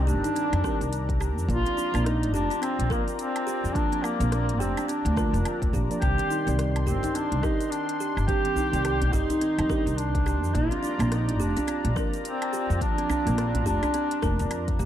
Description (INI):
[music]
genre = organic downtempo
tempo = 106 BPM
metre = 4/4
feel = swing 60% on 16ths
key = unclear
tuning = A4 = 441 Hz
[part]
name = warm duduk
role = melody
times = 0.0-14.8 s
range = Bb3 to G4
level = -28 LUFS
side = equal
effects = digital delay
[part]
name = deep mellow chord stab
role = accompaniment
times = 0.0-14.4 s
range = Eb3 to D5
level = -34 LUFS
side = right 4 dB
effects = chorus, vintage 12-bit sampler grit, sidechain pumping, tape echo
[part]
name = warm analog pad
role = sustained chords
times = 0.0-14.9 s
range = Eb3 to C6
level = -36 LUFS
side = left 1 dB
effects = chorus, sidechain pumping
[part]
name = kalimba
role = arpeggios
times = 0.0-14.9 s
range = C4 to Bb4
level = -34 LUFS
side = equal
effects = tape echo
[part]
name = upright bass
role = bass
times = 0.0-14.9 s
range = F1 to F2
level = -26 LUFS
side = equal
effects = none
[part]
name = afro-pop drum kit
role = drums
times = 0.1-14.9 s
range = hi-hat, rim click, shaker, woodblock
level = -39 LUFS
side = equal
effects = none
[part]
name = electronic kick drum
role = drums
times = 0.6-14.9 s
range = none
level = -29 LUFS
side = equal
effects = none
[part]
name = djembe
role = percussion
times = 6.2-14.4 s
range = none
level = -32 LUFS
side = equal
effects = none
[sound]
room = light reverb, small room reverb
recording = dark, warm production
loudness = -23 LUFS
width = side -11 dB against mid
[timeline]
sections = 0.0-14.9 A section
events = none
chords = 0.0 Cmadd9; 1.5 Bb; 6.0 Cmadd9; 10.5 Bb